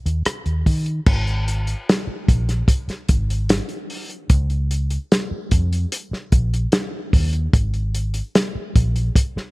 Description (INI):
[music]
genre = lush 1970s-style soul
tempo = 74 BPM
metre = 4/4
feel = straight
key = unclear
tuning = A4 = 441 Hz
[part]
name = vintage muted fingered electric bass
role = bass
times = 0.1-9.4 s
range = Ab1 to Eb3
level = -20 LUFS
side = equal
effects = none
[part]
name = warm soul drum kit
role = drums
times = 0.1-9.5 s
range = crash cymbal, hi-hat, kick drum, rim click, snare drum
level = -19 LUFS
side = equal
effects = none
[sound]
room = little or no reverb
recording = none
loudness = -18 LUFS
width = side -22 dB against mid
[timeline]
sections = 0.0-1.1 A section; 1.1-9.5 B section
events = none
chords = none